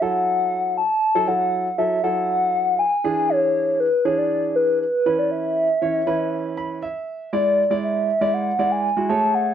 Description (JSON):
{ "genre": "pop", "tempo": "119 BPM", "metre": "4/4", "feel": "straight", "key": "unclear", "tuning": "A4 = 436 Hz", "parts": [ { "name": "hollow clarinet-like synth lead", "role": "melody", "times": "0.0-9.5 s", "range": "B4 to A5", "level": "-19 LUFS", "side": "left 2 dB", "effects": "chorus, slapback echo" }, { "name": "warm grand piano", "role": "accompaniment", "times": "0.0-9.5 s", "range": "E3 to B5", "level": "-25 LUFS", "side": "right 5 dB", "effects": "none" } ], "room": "moderate studio reverb, RT60 0.6 s", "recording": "dry, close 1970s-style studio recording", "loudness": "-18 LUFS", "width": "side -9 dB against mid", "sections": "0.0-7.3 A section; 7.3-9.5 B section", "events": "grand piano fill 6.3-7.3", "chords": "0.0 F#m7; 3.0 E7; 5.1 C#m7; 7.3 E7" }